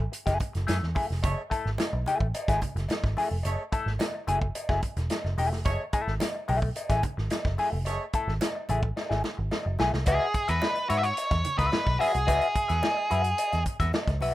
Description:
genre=funk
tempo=109 BPM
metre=4/4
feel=straight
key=unclear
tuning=A4 = 440 Hz
part: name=semi-hollow electric guitar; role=accompaniment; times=0.0-14.3 s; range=A3 to E5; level=-29 LUFS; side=left 3 dB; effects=wah
part: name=vintage muted picked electric bass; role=bass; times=0.0-14.3 s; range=E1 to G#2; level=-28 LUFS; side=equal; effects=none
part: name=warm soul drum kit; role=drums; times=0.1-14.3 s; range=hi-hat, kick drum, snare drum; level=-31 LUFS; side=equal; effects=none
part: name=congas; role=percussion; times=0.4-14.3 s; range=none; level=-42 LUFS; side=right 4 dB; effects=none
part: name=warm horn section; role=second line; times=1.2-8.0 s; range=A3 to C#5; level=-33 LUFS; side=right 3 dB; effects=none
part: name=cowbell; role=percussion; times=1.2-14.1 s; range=none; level=-38 LUFS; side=left 1 dB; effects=none
part: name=octave-fuzz lead guitar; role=melody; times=10.1-13.6 s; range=G#4 to E5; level=-27 LUFS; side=equal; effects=distortion, slapback echo
room=small room ambience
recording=rough home demo mix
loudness=-25 LUFS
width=side -15 dB against mid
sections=0.0-10.1 A section; 10.1-14.3 B section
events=drum fill 9.0-10.1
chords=0.0 F#m9; 10.1 C#m7 (rootless)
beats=0.13 0.68 | 1.24 1.79 2.34 2.90 | 3.45 4.00 4.55 5.11 | 5.66 6.21 6.76 7.32 | 7.87 8.42 8.97 9.52 | 10.07 10.63 11.18 11.73 | 12.28 12.84 13.39 13.94

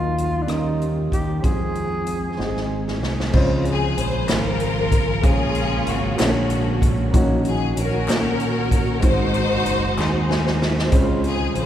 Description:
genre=slow gospel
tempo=63 BPM (dotted quarters)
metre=6/8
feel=straight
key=Db major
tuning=A4 = 439 Hz
part: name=breathy tenor saxophone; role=melody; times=0.0-3.0 s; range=D4 to Ab4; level=-29 LUFS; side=right 1 dB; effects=none
part: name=warm upright piano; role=accompaniment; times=0.0-11.7 s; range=Ab2 to F5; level=-26 LUFS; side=equal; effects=none
part: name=mellow tonewheel organ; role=sustained chords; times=0.0-11.7 s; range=Db3 to C5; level=-28 LUFS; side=right 2 dB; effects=slow rotary speaker, chorus vibrato
part: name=fingered electric bass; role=bass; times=0.0-11.7 s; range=Gb1 to Bb2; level=-24 LUFS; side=equal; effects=none
part: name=swinging big-band drum kit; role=drums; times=0.2-11.7 s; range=crash cymbal, hi-hat, kick drum, rim click, snare drum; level=-22 LUFS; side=equal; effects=none
part: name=bright studio string section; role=melody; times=3.7-11.7 s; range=C4 to C5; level=-24 LUFS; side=left 2 dB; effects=none
part: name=group handclap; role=percussion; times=4.3-10.3 s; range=none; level=-38 LUFS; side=left 2 dB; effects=none
room=wet cathedral reverb, RT60 5.3 s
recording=recorded in a church or concert hall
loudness=-18 LUFS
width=side -11 dB against mid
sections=0.0-3.3 A section; 3.3-11.7 B section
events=drum fill 2.4-3.3, 10.0-10.9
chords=0.5 Eb7; 1.4 Fm; 2.4 Ab; 3.3 Dbmaj7; 5.2 Bbm7; 6.2 Bb7alt; 7.1 Ebm7/Bb; 9.0 Ab7; 10.9 Dbmaj7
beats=0.49 | 1.44 2.39 | 3.34 4.29 | 5.24 6.19 | 7.13 8.08 | 9.03 9.98 | 10.93

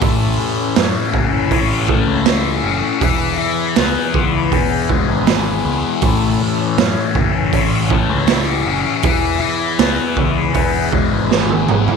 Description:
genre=psychedelic rock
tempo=80 BPM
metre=4/4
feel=straight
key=A major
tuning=A4 = 441 Hz
part: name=overdriven tonewheel organ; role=sustained chords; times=0.0-12.0 s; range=B3 to A4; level=-26 LUFS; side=right 10 dB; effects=slow rotary speaker
part: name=thick fuzz guitar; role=riff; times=0.0-12.0 s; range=A2 to C#4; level=-17 LUFS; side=left 10 dB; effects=distortion, phaser
part: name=growling picked electric bass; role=bass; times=0.0-11.9 s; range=E1 to F#2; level=-22 LUFS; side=right 1 dB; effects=overdrive
part: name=raw garage drum kit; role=drums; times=0.0-12.0 s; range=hi-hat, kick drum, snare drum, toms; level=-18 LUFS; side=right 6 dB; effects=none
room=light reverb, small room ambience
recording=1960s-style stereo with parts hard left and right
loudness=-14 LUFS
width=side -5 dB against mid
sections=0.0-12.0 A section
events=drum fill 11.3-12.0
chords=0.0 A; 3.0 E; 6.0 A; 9.0 E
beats=| 0.03 0.78 1.52 2.27 | 3.02 3.77 4.52 5.27 | 6.02 6.78 7.53 8.29 | 9.04 9.80 10.56 11.32

